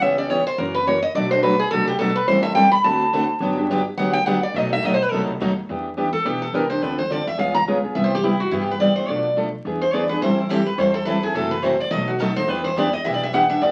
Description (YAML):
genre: acoustic string swing (jazz manouche)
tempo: 212 BPM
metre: 4/4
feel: swing 58% on 8ths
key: E minor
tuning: A4 = 445 Hz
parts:
  - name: picked steel-string acoustic guitar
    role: melody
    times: 0.0-5.2 s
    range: G4 to B5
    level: -22 LUFS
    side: equal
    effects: none
  - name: picked steel-string acoustic guitar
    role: accompaniment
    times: 0.0-13.7 s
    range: B2 to A4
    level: -24 LUFS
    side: equal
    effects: none
  - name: upright bass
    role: bass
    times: 0.0-13.7 s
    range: F#1 to G2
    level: -36 LUFS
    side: equal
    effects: none
  - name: picked steel-string acoustic guitar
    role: accompaniment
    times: 1.2-5.5, 10.2-13.7 s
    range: B2 to B4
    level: -33 LUFS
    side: equal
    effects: none
  - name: picked steel-string acoustic guitar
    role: second line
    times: 6.1-13.7 s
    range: E4 to A#5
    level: -24 LUFS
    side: equal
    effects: none
room: wet studio reverb, RT60 0.5 s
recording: very old 78 rpm record, vinyl crackle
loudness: -21 LUFS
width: mono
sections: 0.0-5.7 A section; 5.7-13.7 A section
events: steel-string acoustic guitar solo 0.0-5.7, 5.7-13.7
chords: 0.0 C#m7b5; 0.6 F#7; 1.1 Bm7; 2.3 Am7; 2.8 D7; 3.4 Gmaj7; 4.5 B7; 5.7 Em7; 6.8 Dm7; 7.4 C#7; 7.9 Cmaj7; 9.1 Bm7b5; 9.7 E7; 10.2 Am7; 11.4 F#m7b5; 11.9 B7; 12.5 Em7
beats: | 0.02 0.30 0.58 0.87 | 1.15 1.43 1.72 2.00 | 2.28 2.56 2.85 3.13 | 3.41 3.70 3.98 4.26 | 4.55 4.83 5.11 5.40 | 5.68 5.96 6.25 6.53 | 6.81 7.10 7.38 7.67 | 7.95 8.23 8.52 8.80 | 9.08 9.37 9.65 9.93 | 10.22 10.50 10.78 11.07 | 11.35 11.63 11.92 12.20 | 12.48 12.77 13.05 13.33 | 13.62